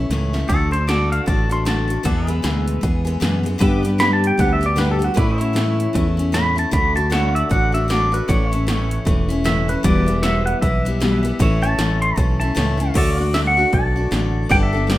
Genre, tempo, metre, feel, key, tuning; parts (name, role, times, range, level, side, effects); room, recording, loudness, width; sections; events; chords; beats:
honky-tonk and classic country; 154 BPM; 4/4; swing 61% on 8ths; D major; A4 = 440 Hz
picked steel-string acoustic guitar; accompaniment; 0.0-15.0 s; E2 to A4; -22 LUFS; left 2 dB
modern bright fingered electric bass; bass; 0.0-15.0 s; E1 to A2; -21 LUFS; equal
80s electronic pad drums; drums; 0.1-15.0 s; crash cymbal, hi-hat, kick drum, snare drum; -22 LUFS; equal
pedal steel guitar; melody; 0.5-15.0 s; E4 to C6; -22 LUFS; equal; tape echo
pedal steel guitar; sustained chords; 0.9-15.0 s; A4 to G5; -32 LUFS; right 1 dB; lush chorus
digital ambience; rough home demo mix; -16 LUFS; side -15 dB against mid
0.5-12.9 A section; 12.9-15.0 B section
drum fill 0.1-0.5; pedal steel guitar solo 0.5-12.9
0.5 D; 2.1 E; 3.6 G; 5.2 A; 6.7 D; 8.3 A; 9.8 Em; 11.4 A; 12.9 D
0.11 | 0.50 0.89 1.28 1.67 | 2.06 2.44 2.83 3.22 | 3.61 4.00 4.39 4.78 | 5.17 5.56 5.95 6.34 | 6.73 7.12 7.50 7.89 | 8.28 8.67 9.06 9.45 | 9.84 10.23 10.62 11.01 | 11.39 11.78 12.17 12.56 | 12.95 13.34 13.72 14.11 | 14.50 14.89